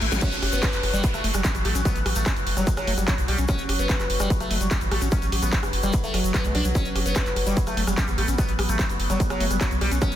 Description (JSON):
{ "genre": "psychedelic trance", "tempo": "147 BPM", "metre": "4/4", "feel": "straight", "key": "F# phrygian", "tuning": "A4 = 440 Hz", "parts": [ { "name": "overtone-sweeping drone", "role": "sustained chords", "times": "0.0-10.2 s", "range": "F#3 to F#4", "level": "-31 LUFS", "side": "equal", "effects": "chorus, built-in reverb, vintage 12-bit sampler grit, sidechain pumping" }, { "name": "screaming distorted acid line", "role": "riff", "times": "0.0-10.1 s", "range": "F#3 to G4", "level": "-32 LUFS", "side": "left 1 dB", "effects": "distortion, chorus, auto-pan, cassette tape, sidechain pumping, ping-pong delay" }, { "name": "round analog bass", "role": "bass", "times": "0.0-10.2 s", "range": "F#1 to B1", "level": "-26 LUFS", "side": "equal", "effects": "none" }, { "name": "techno drum kit", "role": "drums", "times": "0.0-10.2 s", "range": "crash cymbal, handclaps, hi-hat, rim click, snare drum", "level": "-29 LUFS", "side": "equal", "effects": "none" }, { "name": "reverse cymbal and downlifter", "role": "sound effects", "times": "0.0-3.5 s", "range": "none", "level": "-32 LUFS", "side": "left 2 dB", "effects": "none" }, { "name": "egg shaker", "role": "percussion", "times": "0.1-10.2 s", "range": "none", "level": "-36 LUFS", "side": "left 5 dB", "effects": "none" }, { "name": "sitar", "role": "melody", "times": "0.2-10.1 s", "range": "F#3 to D4", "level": "-30 LUFS", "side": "equal", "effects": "phaser, sidechain pumping, ping-pong delay" }, { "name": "electronic kick drum", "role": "drums", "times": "0.2-10.1 s", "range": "none", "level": "-25 LUFS", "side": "equal", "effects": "distortion" } ], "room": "little or no reverb", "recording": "dense, heavily limited modern master", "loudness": "-21 LUFS", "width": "side -11 dB against mid", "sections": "0.2-10.2 A section", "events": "drum fill 0.0; reverse cymbal 0.0; band accent 0.1; drop 0.2-10.2", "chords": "0.2 F#5" }